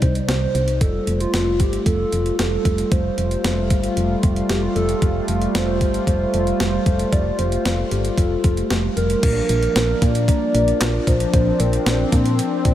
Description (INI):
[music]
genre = synth-pop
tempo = 114 BPM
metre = 4/4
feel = straight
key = Bb major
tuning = A4 = 439 Hz
[part]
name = hollow clarinet-like synth lead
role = melody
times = 0.0-12.4 s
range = F4 to D5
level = -24 LUFS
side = right 1 dB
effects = chorus, tape echo
[part]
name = chorused pulse-width pad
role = sustained chords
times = 0.0-12.7 s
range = C3 to F4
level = -23 LUFS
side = equal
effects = none
[part]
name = solid FM bass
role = bass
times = 0.0-12.7 s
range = F1 to Bb2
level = -22 LUFS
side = equal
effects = none
[part]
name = clean 12-bit digital drum machine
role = drums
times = 0.0-12.7 s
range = crash cymbal, handclaps, hi-hat, kick drum, snare drum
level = -22 LUFS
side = equal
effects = overdrive
[sound]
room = moderate huge ambient reverb, RT60 7.7 s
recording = dreamy mix soaked in reverb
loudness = -17 LUFS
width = side -12 dB against mid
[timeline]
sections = 0.0-9.2 A section; 9.2-12.7 B section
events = none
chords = 0.0 Cm; 0.8 Fadd9; 9.2 Bb